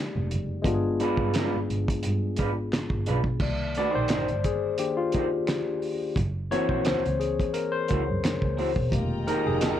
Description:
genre	R&B, neo-soul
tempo	87 BPM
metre	4/4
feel	swing 54% on 16ths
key	C minor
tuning	A4 = 440 Hz
part	barky tine electric piano	accompaniment	0.0-9.8 s	Eb3 to D5	-28 LUFS	left 4 dB	overdrive, wide subtle chorus
part	dark double bass	bass	0.2-9.8 s	E1 to G2	-29 LUFS	right 1 dB	none
part	cloth-damped thuddy drum kit	drums	0.3-9.8 s	crash cymbal, handclaps, hi-hat, kick drum, snare drum	-29 LUFS	right 1 dB	none
part	electric guitar through a small old amp	second line	1.0-9.8 s	Ab3 to C5	-29 LUFS	right 3 dB	none
part	warm studio string section	sustained chords	8.9-9.8 s	F4 to Bb5	-34 LUFS	left 2 dB	none
room	light reverb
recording	none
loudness	-24 LUFS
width	side -10 dB against mid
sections	0.0-3.4 A section; 3.4-9.8 B section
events	tine electric piano solo 3.4-9.8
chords	0.0 Fm11; 0.6 G7b9; 3.4 Cm7; 6.2 F#7#11; 8.9 Fm11

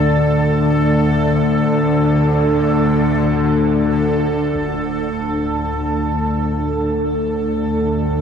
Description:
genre	dark ambient drone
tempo	free time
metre	none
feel	none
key	unclear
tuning	A4 = 444 Hz
part	deep dark ambient pad	sustained chords	0.0-8.2 s	A3 to D5	-19 LUFS	left 1 dB	chorus, built-in reverb, shimmer reverb
part	bowed-like drone	drone	0.0-8.2 s	D2 to D3	-18 LUFS	equal	built-in reverb
part	bubbling stepped-filter texture	texture	0.0-8.2 s	A4	-23 LUFS	right 1 dB	chorus, built-in reverb, shimmer reverb
part	impact	percussion	4.5-4.8 s	none	-40 LUFS	right 1 dB	none
part	carillon bells	arpeggios	4.6-8.2 s	none	barely audible	none	none
room	wet huge ambient reverb, RT60 7.5 s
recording	dark, warm production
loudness	-15 LUFS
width	side -7 dB against mid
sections	0.0-4.5 A section; 4.5-8.2 B section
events	none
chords	0.0 D5

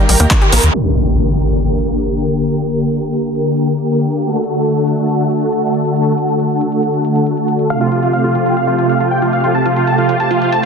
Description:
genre	uplifting trance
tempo	138 BPM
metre	4/4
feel	straight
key	G minor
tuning	A4 = 440 Hz
part	analog string pad	sustained chords	0.0-10.7 s	C3 to Bb4	-14 LUFS	equal	ensemble chorus, sidechain pumping
part	analog pluck	arpeggios	0.0-0.6 s	G3 to G4	-23 LUFS	left 1 dB	chorus, sidechain pumping, ping-pong delay
part	tight sequencer bass	bass	0.1-0.7 s	Bb1 to Eb2	-12 LUFS	equal	sidechain pumping
part	punchy analog drum machine	drums	0.1-10.6 s	handclaps, hi-hat	-18 LUFS	right 1 dB	overdrive, small room ambience, sidechain pumping on hats
part	impact	sound effects	0.7-2.5 s	none	-17 LUFS	equal	none
part	dense compressed supersaw	melody	7.7-10.7 s	F4 to A5	-15 LUFS	right 1 dB	sidechain pumping, ping-pong delay
room	moderate huge ambient reverb, RT60 4.3 s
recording	dense, heavily limited modern master, low-pass filter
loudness	-12 LUFS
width	side -5 dB against mid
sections	0.7-10.7 A section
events	band accent 0.3; impact 0.7-2.5; filter sweep on analog synth pad 0.7-10.7; filter sweep 0.7-10.7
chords	0.0 Eb; 0.7 Gm; 4.2 D; 7.7 Fadd9

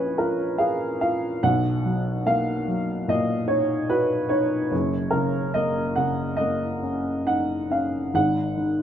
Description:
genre	classical, lyrical solo piano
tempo	68-74 BPM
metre	4/4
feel	rubato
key	F# major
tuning	A4 = 436 Hz
part	dark upright piano	solo	0.0-8.8 s	F#1 to F#5	-21 LUFS	equal	none
room	light reverb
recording	close, detailed microphones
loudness	-21 LUFS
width	side -9 dB against mid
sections	0.0-8.8 A section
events	none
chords	0.0 A#m7; 1.4 Bmaj7; 4.7 F#6; 8.1 G#7(no3)

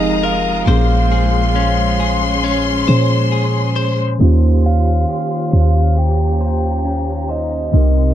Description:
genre	contemporary R&B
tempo	68 BPM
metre	4/4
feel	swing 54% on 16ths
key	unclear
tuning	A4 = 441 Hz
part	soft octave-layered synth lead	melody	0.0-8.1 s	Eb5 to G5	-22 LUFS	equal	chorus, digital delay
part	muted felt-like synth keys	accompaniment	0.0-8.1 s	Bb2 to Db5	-20 LUFS	equal	chorus
part	warm studio string section	sustained chords	0.0-8.1 s	Ab3 to C6	-22 LUFS	equal	none
part	direct-recorded clean electric guitar	arpeggios	0.0-8.1 s	C3 to C5	-23 LUFS	left 6 dB	spring reverb, digital delay
part	clean 808-style bass	bass	0.0-8.1 s	F1 to Bb2	-16 LUFS	equal	none
room	digital ambience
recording	low-pass filter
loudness	-13 LUFS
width	side -11 dB against mid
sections	0.0-4.2 A section; 4.2-8.1 B section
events	none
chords	0.0 Fm11; 0.7 Bbm9; 4.2 Eb13

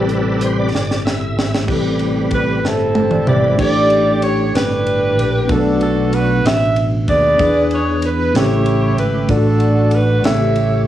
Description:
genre	slow gospel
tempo	63 BPM (dotted quarters)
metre	6/8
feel	straight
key	unclear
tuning	A4 = 440 Hz
part	mellow tine electric piano	accompaniment	0.0-10.9 s	A2 to E5	-19 LUFS	left 1 dB	medium stereo tremolo
part	bright tonewheel organ	sustained chords	0.0-3.6 s	C3 to E5	-21 LUFS	equal	slow rotary speaker, chorus vibrato, plate reverb
part	fingered electric bass	bass	0.0-10.8 s	G1 to E2	-19 LUFS	right 1 dB	none
part	crisp fusion drum kit	drums	0.1-10.7 s	crash cymbal, hi-hat, kick drum, ride cymbal, snare drum, toms	-21 LUFS	right 1 dB	cassette tape
part	warm saxophone section	melody	2.3-10.9 s	C4 to E5	-17 LUFS	right 1 dB	cassette tape, plate reverb, analog delay
room	light reverb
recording	home recording on cassette, studio ambience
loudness	-13 LUFS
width	side -12 dB against mid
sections	0.0-1.7 A section; 1.7-3.6 B section; 3.6-10.9 C section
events	tonewheel organ solo 0.0-1.7, 1.7-3.6; drum fill 0.7-1.7, 2.6-3.6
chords	0.0 Am7; 3.6 A7sus4; 5.5 Bm7; 7.4 E7; 8.3 A7; 9.3 D/A; 10.2 A7

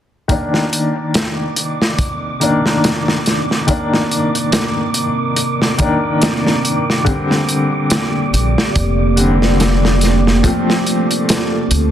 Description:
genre	trip hop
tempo	71 BPM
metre	4/4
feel	swing 56% on 16ths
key	C dorian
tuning	A4 = 440 Hz
part	felt-muted upright piano	accompaniment	0.3-11.9 s	D3 to D4	-18 LUFS	left 2 dB	tremolo, vintage 12-bit sampler grit, low-pass filter, tape echo
part	deep dark ambient pad	sustained chords	1.7-11.9 s	Bb3 to Bb5	-21 LUFS	right 1 dB	chorus, built-in reverb
part	crunchy breakbeat drum kit	drums	0.3-11.9 s	hi-hat, kick drum, snare drum	-17 LUFS	equal	none
part	wind-like tuned noise texture	texture	1.0-11.9 s	D6	-25 LUFS	right 3 dB	built-in reverb
part	upright bass	bass	8.3-11.9 s	F1 to D2	-15 LUFS	equal	none
room	light reverb, small room ambience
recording	dense, heavily limited modern master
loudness	-13 LUFS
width	side -10 dB against mid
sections	0.3-11.9 A section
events	filter sweep on felt piano 0.3-11.9; filter sweep on ambient pad 0.3-11.9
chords	0.3 Cm7; 7.1 Bb6; 10.4 Dm7

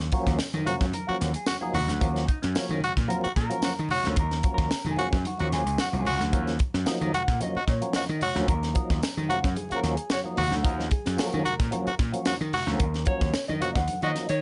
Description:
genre	funk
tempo	111 BPM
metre	4/4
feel	straight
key	Eb minor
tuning	A4 = 438 Hz
part	gritty slap bass	bass	0.0-14.4 s	C2 to Eb3	-31 LUFS	equal	overdrive
part	tight funk drum kit	drums	0.0-14.4 s	hi-hat, kick drum, snare drum	-31 LUFS	equal	none
part	percussive tonewheel organ	stabs	0.1-14.3 s	F3 to Eb4	-34 LUFS	equal	overdrive, chorus vibrato, slow rotary speaker
part	congas	percussion	0.4-14.1 s	none	-40 LUFS	equal	none
part	tambourine	percussion	0.4-13.5 s	none	-43 LUFS	equal	none
part	raspy tenor saxophone	second line	0.7-14.1 s	Gb4	-30 LUFS	equal	none
part	mellow electric guitar	accompaniment	0.9-14.4 s	Db4 to Gb5	-36 LUFS	equal	wah
room	little or no reverb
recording	nothing above 10.5 kHz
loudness	-27 LUFS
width	mono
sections	0.0-14.4 A section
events	clean electric guitar solo 0.0-14.4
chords	0.0 Ebm7

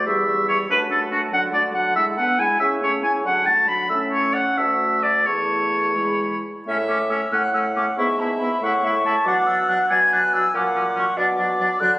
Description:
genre	quick classical-period movement for wind quintet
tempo	94 BPM (dotted quarters)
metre	6/8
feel	rubato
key	A major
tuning	A4 = 440 Hz
part	hollow concert flute	melody	0.0-12.0 s	F#5 to G#6	-24 LUFS	left 1 dB	none
part	clear oboe	second line	0.0-11.9 s	C#4 to B5	-20 LUFS	equal	none
part	clear clarinet	accompaniment	0.0-12.0 s	C#4 to A5	-26 LUFS	right 1 dB	none
part	warm French horn	accompaniment	0.0-11.9 s	F#3 to C#4	-31 LUFS	equal	none
part	mellow bassoon	bass	0.1-12.0 s	D2 to D3	-27 LUFS	equal	none
room	moderate concert hall reverb, RT60 2.3 s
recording	recorded on a phone in the room, club ambience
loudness	-18 LUFS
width	side -19 dB against mid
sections	0.0-6.7 A section; 6.7-12.0 B section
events	none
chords	0.1 C#dim/E; 0.7 D/F#; 1.3 D; 2.0 E7/D; 2.6 A/C#; 3.2 D; 3.9 A; 4.6 D; 5.3 A/E; 6.0 E; 6.7 A; 8.0 E/G#; 8.6 A; 9.3 Bm; 10.5 F#/A#; 11.2 Bm

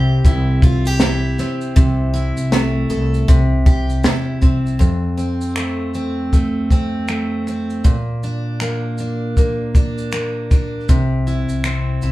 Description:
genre	acoustic pop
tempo	79 BPM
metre	4/4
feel	swing 60% on 16ths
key	F major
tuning	A4 = 440 Hz
part	picked steel-string acoustic guitar	accompaniment	0.0-12.1 s	F2 to A4	-20 LUFS	equal	none
part	upright bass	bass	0.0-4.8, 10.9-12.1 s	C2 to E2	-19 LUFS	equal	none
part	compact cocktail drum kit	drums	0.2-12.1 s	finger snaps, kick drum, shaker, snare drum	-15 LUFS	equal	none
room	moderate large studio reverb, RT60 0.9 s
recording	band playing live in one room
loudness	-15 LUFS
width	side -17 dB against mid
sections	0.0-4.8 A section; 4.8-12.1 B section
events	none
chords	0.0 C; 1.8 Am/C; 4.8 F; 7.9 Bb; 10.9 C

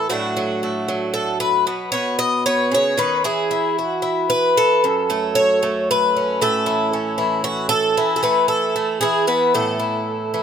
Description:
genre	folk, solo fingerstyle acoustic guitar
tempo	114 BPM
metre	3/4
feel	straight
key	A major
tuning	A4 = 440 Hz
part	picked twelve-string acoustic guitar	solo	0.0-10.4 s	F#2 to D#5	-17 LUFS	equal	none
room	little or no reverb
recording	close, detailed microphones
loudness	-17 LUFS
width	side -8 dB against mid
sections	0.0-10.4 A section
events	none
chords	0.1 D/A; 1.7 B; 3.2 Eadd9; 4.8 F#m; 6.4 A; 8.0 Esus4; 9.0 E; 9.6 A5

